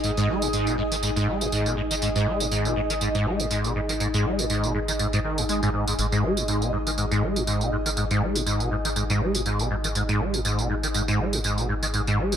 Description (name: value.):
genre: acid house.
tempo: 121 BPM.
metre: 4/4.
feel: swing 55% on 16ths.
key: unclear.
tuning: A4 = 440 Hz.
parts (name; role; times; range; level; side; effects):
liquid acid bass; riff; 0.0-12.4 s; F#2 to G#3; -25 LUFS; equal; tube saturation, ensemble chorus, digital delay.
round analog bass; bass; 0.0-12.4 s; G#1; -31 LUFS; equal; none.
tambourine; drums; 0.0-12.4 s; none; -30 LUFS; right 3 dB; none.
granular cloud pad; texture; 0.0-12.4 s; D#4 to D#5; -29 LUFS; equal; built-in reverb.
room: light reverb.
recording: none.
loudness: -22 LUFS.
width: side -9 dB against mid.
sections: 0.0-12.4 A section.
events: none.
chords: 0.0 G#5.